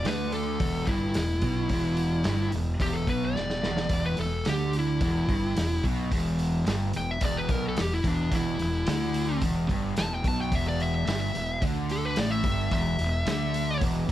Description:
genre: blues rock power trio and southern rock.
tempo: 109 BPM.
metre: 4/4.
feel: straight.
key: E minor.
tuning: A4 = 440 Hz.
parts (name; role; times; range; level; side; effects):
fuzz lead guitar; melody; 0.0-13.8 s; D4 to A5; -31 LUFS; left 1 dB; distortion.
crunchy overdriven guitar; riff; 0.0-14.1 s; E2 to D3; -29 LUFS; equal; none.
fuzz fingered electric bass; bass; 0.0-14.1 s; E1 to D2; -32 LUFS; equal; overdrive.
vintage drum kit; drums; 0.1-14.1 s; hi-hat, kick drum, snare drum; -31 LUFS; equal; none.
room: light reverb.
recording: none.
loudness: -24 LUFS.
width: side -13 dB against mid.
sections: 0.0-14.1 A section.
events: lead electric guitar solo 0.0-14.1; drum fill 3.4-3.9.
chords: 0.0 Em.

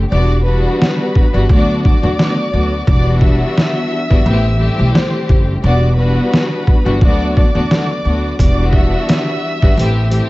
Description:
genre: hip hop, boom-bap hip-hop.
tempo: 87 BPM.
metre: 4/4.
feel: swing 55% on 16ths.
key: E minor.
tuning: A4 = 440 Hz.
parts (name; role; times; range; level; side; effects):
warm studio string section; accompaniment; 0.0-10.3 s; D2 to G4; -18 LUFS; left 1 dB; cassette tape, high-pass filter, low-pass filter.
upright bass; bass; 0.0-10.2 s; E1 to E2; -15 LUFS; equal; none.
warm studio violin section; melody; 0.1-10.3 s; B4 to E6; -22 LUFS; equal; high-pass filter, low-pass filter.
trip hop sampler-style drum kit; drums; 0.8-10.3 s; hi-hat, kick drum, snare drum; -13 LUFS; equal; none.
room: small room ambience.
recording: vinyl crackle, nothing above 7.9 kHz.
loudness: -11 LUFS.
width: side -20 dB against mid.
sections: 0.0-10.3 A section.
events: break 0.0-8.4.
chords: 0.1 Em7; 1.5 Bm7/D; 2.9 Em7; 4.3 Am9; 5.6 Em7; 7.0 Bm7/D; 8.4 Em7; 9.8 Am9.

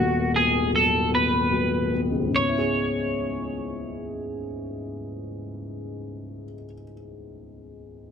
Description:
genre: pop.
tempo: 47-54 BPM (dotted quarters).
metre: 6/8.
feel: straight.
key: C# minor.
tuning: A4 = 440 Hz.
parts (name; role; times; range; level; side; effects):
twelve-string electric guitar; melody; 0.0-6.7 s; F#4 to C#5; -24 LUFS; right 1 dB; lush chorus.
dark upright piano; accompaniment; 0.0-8.1 s; D#1 to G#4; -26 LUFS; left 2 dB; none.
room: light reverb, studio reverb.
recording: none.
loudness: -22 LUFS.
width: side -7 dB against mid.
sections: 0.0-2.3 A section; 2.3-7.5 B section.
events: slowing down 0.0-2.3.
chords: 0.0 G#m7; 2.3 C#m7.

